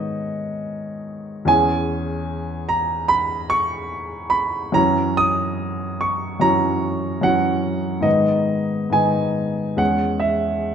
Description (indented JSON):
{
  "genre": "classical, romantic character piece for solo piano",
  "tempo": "65-78 BPM",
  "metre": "4/4",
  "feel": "rubato",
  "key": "unclear",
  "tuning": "A4 = 440 Hz",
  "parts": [
    { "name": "clear concert grand piano", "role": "solo", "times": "0.0-10.7 s", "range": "E2 to D#6", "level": "-18 LUFS", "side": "equal", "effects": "none" }
  ],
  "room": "wet recital hall reverb, RT60 1.4 s",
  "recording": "minimal, uncompressed stereo recording",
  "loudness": "-18 LUFS",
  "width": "side -8 dB against mid",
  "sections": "0.0-10.7 A section",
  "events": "none",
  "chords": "0.0 G#m; 1.5 C#m/E; 4.8 F#7; 8.1 G#m; 9.8 C#m/E"
}